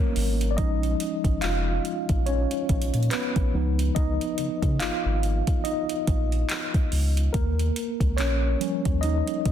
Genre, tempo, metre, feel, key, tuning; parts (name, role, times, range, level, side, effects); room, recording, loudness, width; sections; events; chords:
contemporary R&B; 71 BPM; 4/4; swing 58% on 16ths; A4 = 439 Hz
mellow tine electric piano; accompaniment; 0.0-9.5 s; E#3 to E#5; -27 LUFS; equal; medium stereo tremolo
warm sub bass; bass; 0.2-9.5 s; E#1 to C#3; -25 LUFS; equal
smooth R&B drum kit; drums; 0.2-9.5 s; handclaps, hi-hat, kick drum; -27 LUFS; equal
digital ambience; dense, heavily limited modern master; -22 LUFS; side -10 dB against mid
0.0-9.5 A section
tine electric piano solo 0.0-9.5
0.0 G#m11; 0.6 A#m7; 3.5 C#9; 7.3 D#9